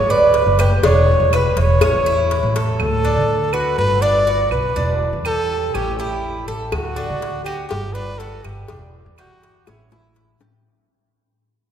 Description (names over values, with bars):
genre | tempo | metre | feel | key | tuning
latin, Cuban son and guajira | 122 BPM | 4/4 | straight | D major | A4 = 441 Hz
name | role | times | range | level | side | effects
trumpet with bucket mute | melody | 0.0-10.4 s | E4 to D5 | -20 LUFS | equal | none
Cuban tres | arpeggios | 0.0-10.7 s | G3 to D5 | -22 LUFS | right 3 dB | none
upright bass | bass | 0.0-10.6 s | E1 to D3 | -20 LUFS | equal | none
cowbell and bongos | percussion | 0.3-2.8, 6.7-10.7 s | none | -24 LUFS | left 3 dB | none
claves | percussion | 0.6-9.9 s | none | -33 LUFS | right 4 dB | none
room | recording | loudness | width
wet church reverb, RT60 3.8 s | recorded in a church or concert hall | -15 LUFS | side -9 dB against mid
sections
0.0-2.8 A section; 2.8-10.7 B section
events
fade-out 2.8-10.7; drum fill 9.7-10.7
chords
0.0 Gmaj7; 0.8 E5; 1.8 A; 2.8 D; 3.8 Gmaj7; 4.8 Em7; 5.7 A7; 6.7 D; 7.7 G5; 8.7 Em7; 9.7 A7